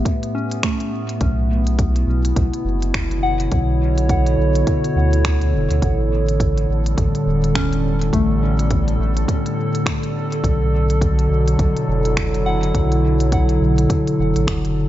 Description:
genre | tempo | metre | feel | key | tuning
ambient dub | 104 BPM | 4/4 | swing 59% on 16ths | B minor | A4 = 440 Hz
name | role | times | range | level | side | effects
warbly tape-like pad | sustained chords | 0.0-14.9 s | A2 to E5 | -20 LUFS | equal | chorus, built-in reverb
warm sub bass | bass | 0.0-14.9 s | E1 to D2 | -19 LUFS | equal | none
electronic kick drum | drums | 0.1-14.6 s | none | -22 LUFS | equal | none
organic electronic drum kit | drums | 0.1-14.7 s | finger snaps, hi-hat | -28 LUFS | equal | dub echo
soft synth bell | arpeggios | 0.3-14.9 s | A3 to F#5 | -28 LUFS | left 1 dB | chorus, phaser, low-pass filter, dub echo
room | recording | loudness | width
light reverb | nothing above 7.7 kHz | -16 LUFS | side -13 dB against mid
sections
0.0-14.9 A section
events
filter sweep on synth bell 0.0-14.9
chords
0.0 A5; 1.2 Bm11; 5.8 A7sus4; 10.4 Bm7

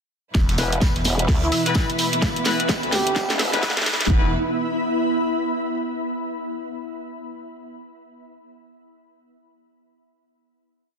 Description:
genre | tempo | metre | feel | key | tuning
bass house | 128 BPM | 4/4 | swing 60% on 16ths | unclear | A4 = 438 Hz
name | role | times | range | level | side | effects
rich symphonic string section | sustained chords | 0.3-4.3 s | B2 to B4 | -28 LUFS | equal | sidechain pumping
phased detuned saw bass | bass | 0.3-4.3 s | E1 to E2 | -27 LUFS | equal | phaser, overdrive, sidechain pumping
electronic kick drum | drums | 0.3-4.2 s | none | -21 LUFS | equal | none
garage drum kit | drums | 0.3-4.1 s | hi-hat, snare drum, woodblock | -24 LUFS | equal | none
vintage brush drum kit | drums | 0.3-4.0 s | hi-hat, snare drum, tambourine | -32 LUFS | right 1 dB | high-pass filter on hats, soft clipping on snare, high-pass filter on snare, high-pass filter on perc, high-pass filter on room
riser | sound effects | 2.0-4.1 s | none | -32 LUFS | right 1 dB | none
ethereal airy pad | texture | 1.0-5.9 s | B3 to B5 | -26 LUFS | equal | ensemble chorus, built-in reverb, sidechain pumping
bright horn section | stabs | 0.6-4.3 s | E3 to B4 | -29 LUFS | left 5 dB | sidechain pumping, low-pass filter, tape echo
growl bass | bass | 0.6-3.7 s | E1 to D2 | -24 LUFS | equal | chorus, tube saturation, sidechain pumping
trumpet with bucket mute | melody | 1.4-3.3 s | E4 to G4 | -27 LUFS | right 2 dB | vintage 12-bit sampler grit, tape echo
room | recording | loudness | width
moderate digital room reverb, RT60 1.2 s, studio ambience | dense, heavily limited modern master, high-pass filter | -19 LUFS | side -6 dB against mid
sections
0.3-4.1 build; 4.1-6.0 final chord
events
build-up 0.3-4.1; drum fill 0.3-4.1; filter sweep on horn section 0.3-4.1; filter sweep 0.3-4.1; riser 2.0-4.1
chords
0.3 E5

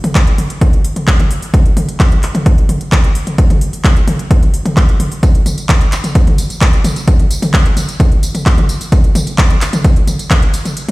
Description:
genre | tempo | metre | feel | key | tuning
techno | 130 BPM | 4/4 | straight | none | none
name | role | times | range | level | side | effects
techno drum kit | drums | 0.0-10.9 s | handclaps, hi-hat, tambourine, toms | -17 LUFS | equal | none
electronic kick drum | drums | 0.2-10.4 s | none | -10 LUFS | equal | none
room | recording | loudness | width
digital ambience | played on a big sound system in a bare room, stone room reverb | -10 LUFS | side -21 dB against mid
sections
0.0-10.9 A section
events
none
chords
none

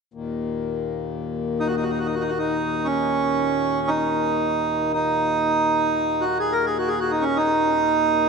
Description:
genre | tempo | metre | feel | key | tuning
world meditative, free-time meditation music | free time | none | none | Eb minor pentatonic | A4 = 440 Hz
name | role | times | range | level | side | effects
hand-pumped harmonium | drone | 0.1-8.3 s | Eb2 to Bb2 | -27 LUFS | left 5 dB | none
accordion | melody | 1.6-8.3 s | Db4 to Bb4 | -20 LUFS | right 3 dB | tape echo
room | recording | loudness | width
wet church reverb, RT60 2.9 s | dark, warm production | -20 LUFS | side -5 dB against mid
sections
0.1-8.3 A section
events
none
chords
none

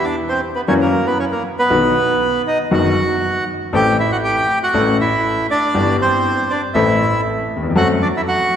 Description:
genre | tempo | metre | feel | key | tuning
tango | 119 BPM | 4/4 | rubato | unclear | A4 = 440 Hz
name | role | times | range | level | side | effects
bandoneon | melody | 0.0-8.6 s | A#3 to G5 | -17 LUFS | right 1 dB | none
bright grand piano | accompaniment | 0.7-8.0 s | F#1 to A4 | -18 LUFS | left 2 dB | none
room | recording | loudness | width
wet church reverb, RT60 2.9 s | recorded in a church or concert hall | -14 LUFS | side -9 dB against mid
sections
0.0-8.6 A section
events
none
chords
0.0 N.C.; 0.7 F#7; 1.7 B; 3.7 Am; 4.7 A; 5.7 Em/G; 6.7 Am; 7.8 F#dim

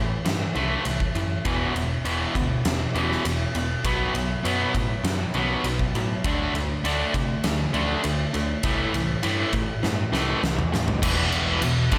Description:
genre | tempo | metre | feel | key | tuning
hard rock | 100 BPM | 4/4 | straight | unclear | A4 = 440 Hz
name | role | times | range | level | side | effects
distorted electric guitar | riff | 0.0-12.0 s | E2 to D4 | -30 LUFS | equal | overdrive, slapback echo
overdriven picked electric bass | bass | 0.0-12.0 s | E1 to C3 | -31 LUFS | equal | none
huge arena drum kit | drums | 0.3-12.0 s | crash cymbal, kick drum, ride cymbal, snare drum, toms | -30 LUFS | equal | none
overdriven electric guitar | riff | 1.5-11.0 s | E2 to D4 | -31 LUFS | equal | none
high-gain distorted guitar | riff | 11.0-12.0 s | E2 to D4 | -28 LUFS | equal | distortion
room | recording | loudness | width
moderate lush hall reverb, RT60 1.8 s, small room ambience | big arena sound | -24 LUFS | mono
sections
0.0-11.0 A section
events
drum fill 9.8-11.0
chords
0.0 Am; 1.5 E5; 3.8 B5; 6.2 D5; 8.6 Am/C; 11.0 E5

